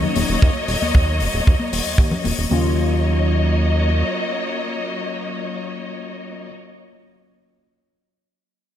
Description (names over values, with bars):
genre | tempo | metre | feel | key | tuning
nu-disco, nu disco | 115 BPM | 4/4 | straight | Eb minor | A4 = 440 Hz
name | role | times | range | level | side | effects
mellow tine electric piano | accompaniment | 0.0-6.5 s | Gb3 to F4 | -26 LUFS | left 2 dB | ensemble chorus, ping-pong delay
dark symphonic string section | sustained chords | 0.0-6.5 s | Gb3 to Eb5 | -24 LUFS | left 1 dB | sidechain pumping
soft round pluck | arpeggios | 0.0-2.8 s | Db3 to Gb3 | -33 LUFS | left 4 dB | none
chorused synth bass | bass | 0.0-4.0 s | Eb1 to Eb2 | -20 LUFS | right 1 dB | none
congas | percussion | 0.0-2.4 s | none | -28 LUFS | left 4 dB | none
hi-hat | drums | 0.2-2.4 s | none | -29 LUFS | left 7 dB | none
kick drum | drums | 0.4-2.1 s | none | -15 LUFS | right 1 dB | none
room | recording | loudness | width
moderate lush hall reverb, RT60 1.8 s, small room ambience | bright 1980s-style digital production | -17 LUFS | side -10 dB against mid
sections
0.0-2.5 A section; 2.5-6.7 B section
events
none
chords
0.0 Ebm7